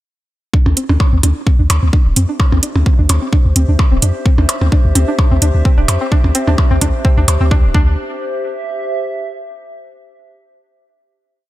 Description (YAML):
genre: minimal techno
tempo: 129 BPM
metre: 4/4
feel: swing 54% on 16ths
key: unclear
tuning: A4 = 444 Hz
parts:
  - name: string-like resonator pluck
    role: riff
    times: 0.5-8.0 s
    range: C4 to D4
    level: -22 LUFS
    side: equal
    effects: chorus, vintage 12-bit sampler grit, sidechain pumping, analog delay
  - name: electronic kick drum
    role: drums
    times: 0.5-7.8 s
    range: none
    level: -12 LUFS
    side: equal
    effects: none
  - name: warbly tape-like pad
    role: texture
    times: 2.7-9.8 s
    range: G4 to E5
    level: -24 LUFS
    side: equal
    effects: chorus, built-in reverb, sidechain pumping
  - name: punchy sub bass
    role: bass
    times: 0.7-8.0 s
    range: D1 to F2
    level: -13 LUFS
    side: equal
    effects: sidechain pumping
  - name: percussion blips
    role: percussion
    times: 0.7-7.4 s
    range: none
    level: -23 LUFS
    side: right 1 dB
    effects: analog delay
  - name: electronic hi-hat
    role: drums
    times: 0.8-7.4 s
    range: none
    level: -16 LUFS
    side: right 3 dB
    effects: none
room: light reverb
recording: none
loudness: -11 LUFS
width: side -16 dB against mid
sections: 0.5-8.0 groove; 8.0-9.8 final note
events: fade-in on ambient pad 0.5-8.0; filter sweep on synth pluck 0.5-8.0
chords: 0.5 D7(no3); 7.7 D7sus4; 8.0 C/G